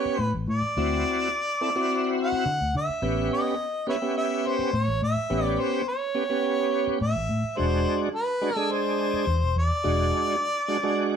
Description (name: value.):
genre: straight-eighth soul blues.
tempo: 106 BPM.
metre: 4/4.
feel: straight.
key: unclear.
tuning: A4 = 440 Hz.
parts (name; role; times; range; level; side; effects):
warm harmonica; melody; 0.0-11.2 s; B4 to F#5; -27 LUFS; equal; overdrive.
bright tonewheel organ; accompaniment; 0.0-11.2 s; G#3 to A4; -26 LUFS; right 2 dB; overdrive, chorus vibrato, slow rotary speaker.
vintage muted fingered electric bass; bass; 0.1-10.1 s; E1 to D3; -27 LUFS; left 1 dB; none.
room: wet studio reverb, RT60 0.7 s.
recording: band playing live in one room.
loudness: -23 LUFS.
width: side -7 dB against mid.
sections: 0.0-11.2 A section.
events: none.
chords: 0.0 A9; 0.8 D9; 3.0 A9; 7.6 E9.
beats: 0.20 | 0.76 1.33 1.90 2.46 | 3.03 3.60 4.17 4.73 | 5.30 5.87 6.44 7.00 | 7.57 8.14 8.71 9.27 | 9.84 10.41 10.98.